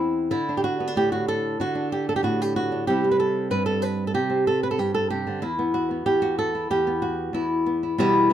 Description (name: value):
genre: flamenco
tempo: 188 BPM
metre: 4/4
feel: straight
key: E minor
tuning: A4 = 439 Hz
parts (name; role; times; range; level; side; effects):
- flamenco guitar; solo; 0.0-8.3 s; E2 to B4; -21 LUFS; equal; none
room: light reverb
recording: close, detailed microphones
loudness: -21 LUFS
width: side -10 dB against mid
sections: 0.0-8.0 A section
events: none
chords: 0.3 D; 2.9 C; 5.4 Emadd9